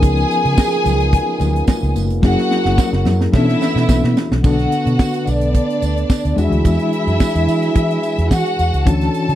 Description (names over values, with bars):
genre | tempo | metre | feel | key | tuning
disco | 109 BPM | 4/4 | straight | B dorian | A4 = 440 Hz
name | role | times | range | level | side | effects
warm studio string section | second line | 0.0-9.4 s | D4 to A5 | -20 LUFS | right 1 dB | none
reed electric piano | accompaniment | 0.0-9.4 s | D3 to A#4 | -21 LUFS | left 3 dB | fast tremolo
dark French horn section | sustained chords | 0.0-9.4 s | C#3 to C#5 | -25 LUFS | right 2 dB | none
vintage muted fingered electric bass | bass | 0.0-9.4 s | E#1 to E3 | -18 LUFS | equal | none
tight funk drum kit | drums | 0.0-9.4 s | crash cymbal, hi-hat, kick drum, snare drum | -16 LUFS | right 1 dB | none
tambourine | percussion | 0.0-9.0 s | none | -38 LUFS | right 14 dB | none
congas | percussion | 0.6-4.3 s | none | -28 LUFS | left 7 dB | none
room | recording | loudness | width
little or no reverb | dry, close 1970s-style studio recording | -14 LUFS | side -12 dB against mid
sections
0.0-4.4 A section; 4.4-9.4 B section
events
drum fill 2.2-4.4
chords
0.0 C#13; 2.2 F#9; 3.3 Bm11; 4.4 Bm7; 6.4 E9